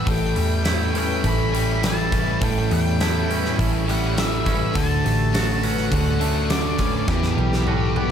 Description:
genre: rock, shoegaze and dream pop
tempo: 103 BPM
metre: 4/4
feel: straight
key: A mixolydian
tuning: A4 = 440 Hz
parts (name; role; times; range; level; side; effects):
- octave-fuzz lead guitar; melody; 0.0-8.1 s; G4 to B5; -28 LUFS; left 1 dB; distortion, digital delay
- picked twelve-string acoustic guitar; arpeggios; 0.0-8.1 s; F#4 to B4; -31 LUFS; left 10 dB; lush chorus, digital delay
- thick fuzz guitar; riff; 0.0-8.1 s; A2 to F#4; -28 LUFS; left 9 dB; distortion, analog chorus
- twangy electric guitar; riff; 0.0-8.1 s; E2 to F#4; -27 LUFS; right 11 dB; reverse reverb
- vintage muted picked electric bass; bass; 0.0-8.1 s; A1 to E2; -24 LUFS; equal; none
- biting overdriven guitar; riff; 0.1-8.1 s; E2 to D4; -29 LUFS; left 1 dB; none
- huge arena drum kit; drums; 0.1-8.1 s; hi-hat, kick drum, snare drum, toms; -25 LUFS; equal; none
room: small room ambience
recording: none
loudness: -18 LUFS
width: side -8 dB against mid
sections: 0.0-8.1 A section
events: drum fill 7.1-8.1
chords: 0.1 A7; 4.8 Dmaj7; 7.1 Emadd9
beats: | 0.08 0.66 1.25 1.83 | 2.42 3.00 3.58 4.17 | 4.75 5.34 5.92 6.50 | 7.09 7.67

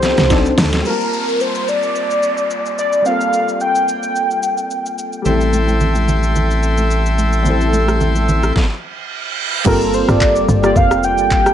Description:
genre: amapiano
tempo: 109 BPM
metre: 4/4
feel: swing 55% on 16ths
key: G dorian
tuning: A4 = 440 Hz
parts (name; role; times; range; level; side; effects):
- warm velvety synth lead; melody; 0.0-5.0, 9.7-11.5 s; Bb4 to G5; -17 LUFS; equal; chorus, tape echo
- warm analog keys; accompaniment; 0.0-11.5 s; E3 to A5; -20 LUFS; left 1 dB; chorus
- tight log drum bass; bass; 0.0-0.8, 9.7-11.5 s; F1 to D2; -18 LUFS; equal; none
- smooth R&B drum kit; drums; 0.0-11.5 s; crash cymbal, handclaps, hi-hat, kick drum, rim click, shaker, snare drum; -19 LUFS; equal; none
- congas; percussion; 0.2-0.7, 5.3-8.4 s; none; -23 LUFS; right 2 dB; none
- downlifter and reverse cymbal; sound effects; 0.9-9.7 s; none; -25 LUFS; right 3 dB; none
- pipe organ, cornet; sustained chords; 5.3-8.5 s; A4 to C6; -20 LUFS; left 1 dB; sidechain pumping
- saturated sub bass; bass; 5.3-8.5 s; A1; -16 LUFS; equal; none
room: light reverb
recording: nothing above 10.9 kHz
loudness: -13 LUFS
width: side -10 dB against mid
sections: 0.9-9.7 A section; 9.7-11.5 B section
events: drum fill 0.0-0.9; stop 8.6-9.7; reverse cymbal 8.8-9.7; drop 9.7-11.5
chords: 0.3 D7b9; 0.9 Gm11; 5.3 Am7; 9.4 N.C.; 9.7 Gm11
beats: 0.30 | 0.85 1.40 1.95 2.50 | 3.05 3.60 4.15 4.71 | 5.25 5.81 6.36 6.91 | 7.46 8.01 8.56 9.11 | 9.66 10.21 10.76 11.31

